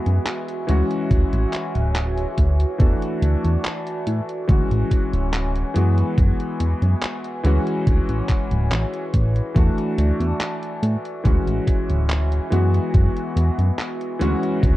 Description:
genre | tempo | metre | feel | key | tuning
vaporwave | 71 BPM | 4/4 | straight | D lydian | A4 = 440 Hz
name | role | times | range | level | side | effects
warm electric grand piano | accompaniment | 0.0-14.8 s | E3 to F#4 | -25 LUFS | left 1 dB | lush chorus, tape echo
warbly tape-like pad | sustained chords | 0.0-14.8 s | F#4 to A5 | -32 LUFS | right 2 dB | chorus, built-in reverb
chorused synth bass | bass | 0.1-14.8 s | D1 to A2 | -19 LUFS | equal | tube saturation
detuned 8-bit digital drum machine | drums | 0.1-14.8 s | handclaps, hi-hat | -30 LUFS | equal | none
electronic kick drum | drums | 1.1-14.8 s | none | -18 LUFS | equal | none
room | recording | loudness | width
little or no reverb | dark, warm production, cassette tape | -18 LUFS | side -16 dB against mid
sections
0.0-14.8 A section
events
none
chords
0.0 F#9sus4; 0.7 Dmaj9#11; 2.8 E9sus4; 4.5 Dmaj9#11; 5.8 F#9sus4; 7.4 Dmaj9#11; 9.6 E9sus4; 11.2 Dmaj9#11; 12.5 F#9sus4; 14.2 Dmaj9#11

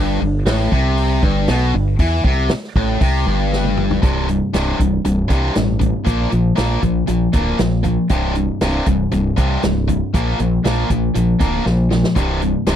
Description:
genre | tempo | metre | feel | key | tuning
classic rock | 118 BPM | 4/4 | straight | unclear | A4 = 440 Hz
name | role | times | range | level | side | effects
tight distorted guitar | riff | 0.0-12.8 s | C2 to Bb3 | -18 LUFS | left 1 dB | distortion
growling fingered electric bass | bass | 0.0-12.8 s | C1 to E2 | -19 LUFS | equal | overdrive
vintage drum kit | drums | 0.5-12.8 s | hi-hat, kick drum, snare drum, toms | -19 LUFS | equal | none
room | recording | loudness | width
little or no reverb | dry, close 1970s-style studio recording | -15 LUFS | side -10 dB against mid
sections
0.0-4.0 A section; 4.0-12.8 B section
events
drum fill 3.5-4.0, 11.7-12.2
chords
0.0 Gsus4; 4.0 C5; 6.1 Bb5; 8.1 C5; 10.1 Bb5; 12.2 C5

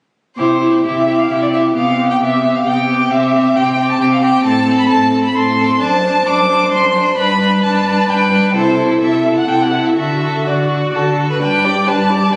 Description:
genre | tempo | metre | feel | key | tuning
quick classical-period movement for string quartet | 132 BPM | 3/4 | rubato | C major, G major from 5.8 s | A4 = 440 Hz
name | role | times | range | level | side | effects
warm violin | melody | 0.4-12.4 s | C5 to D6 | -19 LUFS | equal | none
rich violin | second line | 0.4-12.4 s | F#4 to D5 | -22 LUFS | equal | none
rich viola | accompaniment | 0.4-12.4 s | B3 to G4 | -18 LUFS | equal | none
rich cello | bass | 0.4-12.4 s | F#2 to D3 | -22 LUFS | equal | none
room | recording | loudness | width
wet recital hall reverb, RT60 1.5 s | recorded on a phone in the room, club reverb, compression | -14 LUFS | mono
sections
0.4-11.4 A section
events
none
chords
0.4 C; 1.8 G/C; 3.1 C; 4.4 Am; 5.8 D7/F#; 7.2 G; 8.5 Am/C; 10.0 D; 11.4 G

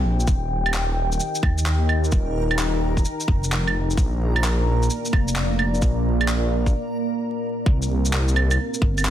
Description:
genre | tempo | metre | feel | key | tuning
future garage | 130 BPM | 4/4 | swing 66% on 16ths | unclear | A4 = 440 Hz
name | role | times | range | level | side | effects
deep dark ambient pad | sustained chords | 0.0-9.1 s | Bb3 to Bb5 | -27 LUFS | equal | chorus, built-in reverb, vintage 12-bit sampler grit, sidechain pumping
swelling detuned saw bass | bass | 0.0-9.1 s | Eb1 to Eb2 | -22 LUFS | equal | tube saturation, sidechain pumping
electronic shaker, claves and handclaps | drums | 0.2-9.1 s | none | -26 LUFS | right 2 dB | overdrive
electronic kick drum | drums | 0.3-8.9 s | none | -20 LUFS | equal | overdrive
backwards swelling texture | texture | 1.0-9.1 s | Bb4 to F5 | -34 LUFS | right 3 dB | built-in reverb
room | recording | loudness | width
light reverb, digital ambience | dense, heavily limited modern master, vinyl crackle | -19 LUFS | side -11 dB against mid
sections
0.0-7.7 A section; 7.7-9.1 B section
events
break 6.7-7.7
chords
0.3 Eb; 4.0 Bb; 7.7 C7(no3)

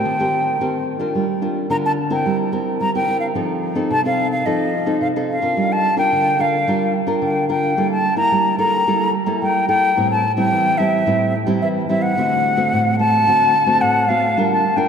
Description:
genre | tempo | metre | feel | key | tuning
samba | 109 BPM | 4/4 | straight | G minor from 5.6 s | A4 = 435 Hz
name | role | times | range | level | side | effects
concert flute | melody | 0.0-14.9 s | Eb5 to Bb5 | -18 LUFS | left 1 dB | none
nylon-string guitar | accompaniment | 0.0-14.9 s | A2 to Bb4 | -20 LUFS | right 1 dB | none
room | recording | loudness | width
wet cathedral reverb, RT60 5.7 s | in a vast, echoing space | -16 LUFS | side -7 dB against mid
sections
0.0-5.6 A section; 5.6-14.9 B section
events
none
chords
0.0 Cm7/Eb; 1.2 Gm7; 2.3 C7/G; 3.4 F7; 5.6 Gm7; 7.8 Gm69; 10.0 Am7; 12.2 D7; 14.4 Gm7

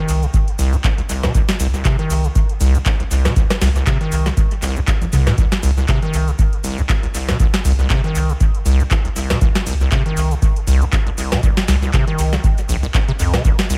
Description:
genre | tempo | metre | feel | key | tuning
acid house | 119 BPM | 4/4 | swing 56% on 16ths | unclear | A4 = 444 Hz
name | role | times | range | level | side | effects
acid bass, square | riff | 0.0-13.8 s | Bb1 to Eb3 | -23 LUFS | equal | tube saturation, dub echo
saturated sub bass | bass | 0.1-13.8 s | C2 | -21 LUFS | equal | tube saturation, sidechain pumping
booming analog drum machine | drums | 0.1-13.8 s | handclaps, hi-hat, ride cymbal, rim click, shaker, snare drum, toms | -25 LUFS | equal | dub echo
electronic kick drum | drums | 0.3-13.6 s | none | -20 LUFS | equal | none
room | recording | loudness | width
little or no reverb | echo-heavy mix | -17 LUFS | mono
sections
0.0-13.8 A section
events
drum fill 5.0-5.4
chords
0.0 Bbsus4 (rootless)

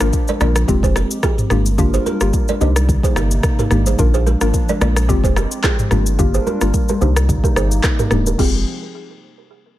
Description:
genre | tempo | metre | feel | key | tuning
afrobeats | 109 BPM | 4/4 | swing 55% on 16ths | F dorian | A4 = 441 Hz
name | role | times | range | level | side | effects
hollow square pluck | accompaniment | 0.0-8.6 s | Ab3 to Bb4 | -23 LUFS | left 3 dB | chorus, low-pass filter
hollow soft pad | sustained chords | 0.0-8.6 s | C3 to Bb4 | -26 LUFS | equal | chorus, low-pass filter
warm sub bass | bass | 0.0-8.6 s | Eb1 to C2 | -17 LUFS | equal | none
afro-pop drum kit | drums | 0.0-8.5 s | crash cymbal, handclaps, kick drum, rim click, shaker, toms | -18 LUFS | equal | none
balafon | riff | 0.3-8.5 s | F4 to Eb5 | -24 LUFS | right 6 dB | low-pass filter, ping-pong delay
congas | percussion | 0.3-8.6 s | none | -26 LUFS | left 2 dB | none
room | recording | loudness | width
studio reverb | none | -14 LUFS | side -14 dB against mid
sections
0.0-8.4 A section; 8.4-9.8 B section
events
filter sweep 0.0-8.4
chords
0.0 Bb; 0.7 Fmadd9; 1.5 Gm7; 2.6 Cm7; 4.0 Bb; 5.1 Fmadd9; 5.9 Gm7; 7.0 Cm7; 8.4 Fmadd9

